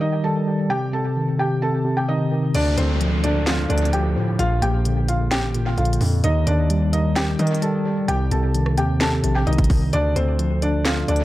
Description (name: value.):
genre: hip hop, trap.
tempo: 130 BPM.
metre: 4/4.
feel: half-time.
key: D phrygian.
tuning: A4 = 440 Hz.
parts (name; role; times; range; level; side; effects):
felt-muted upright piano; melody; 0.0-11.2 s; C4 to A5; -24 LUFS; equal; low-pass filter, tape echo.
mellow tine electric piano; accompaniment; 0.0-11.2 s; Bb2 to Bb3; -22 LUFS; equal; medium stereo tremolo, low-pass filter, tape echo.
distorted 808-style bass; bass; 2.5-11.2 s; A1 to Eb3; -22 LUFS; equal; distortion.
trap drum kit; drums; 2.5-11.2 s; crash cymbal, handclaps, hi-hat, kick drum, rim click, snare drum; -25 LUFS; equal; tape echo.
downlifter; sound effects; 2.5-6.2 s; none; -32 LUFS; equal; none.
room: light reverb.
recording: echo-heavy mix.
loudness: -18 LUFS.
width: side -16 dB against mid.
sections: 0.0-2.5 A section; 2.5-11.2 B section.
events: none.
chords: 0.0 Eb; 0.7 Cm; 2.5 Dm; 4.4 Bb; 6.2 Eb; 8.1 Cm; 9.9 Dm.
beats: 0.24 | 0.70 1.16 1.62 2.08 | 2.54 3.01 3.47 3.93 | 4.39 4.85 5.32 5.78 | 6.24 6.70 7.16 7.62 | 8.08 8.54 9.01 9.47 | 9.93 10.39 10.85.